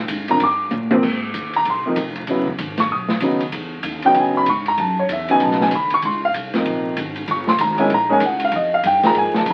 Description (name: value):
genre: jazz, small-group swing and bop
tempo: 192 BPM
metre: 4/4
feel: swing 62% on 8ths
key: unclear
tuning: A4 = 440 Hz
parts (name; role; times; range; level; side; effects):
- upright bass; bass; 0.0-9.5 s; F1 to Bb2; -33 LUFS; equal; none
- open jazz drum kit; drums; 0.1-9.5 s; crash cymbal, hi-hat, kick drum, ride cymbal, snare drum, toms; -27 LUFS; equal; none
- warm concert grand piano; accompaniment; 0.3-9.5 s; C3 to D#6; -19 LUFS; equal; none
room: moderate club reverb, RT60 0.6 s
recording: very old 78 rpm record, vinyl crackle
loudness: -19 LUFS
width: mono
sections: 0.0-1.0 A section; 1.0-9.5 A section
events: drum fill 0.7-1.0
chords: 0.0 Ebmaj13 (rootless); 1.0 Abadd9; 2.3 Gbsus2; 2.9 Badd9; 3.5 Emaj9; 4.8 Gb5; 5.4 Badd9; 6.0 Dbmaj13; 7.3 Gdim; 7.9 Bbm7; 8.5 Fm11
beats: 0.09 0.40 0.72 | 1.03 1.34 1.65 1.97 | 2.28 2.59 2.90 3.22 | 3.53 3.84 4.16 4.47 | 4.78 5.09 5.41 5.72 | 6.03 6.35 6.66 6.97 | 7.28 7.60 7.91 8.22 | 8.53 8.85 9.16 9.47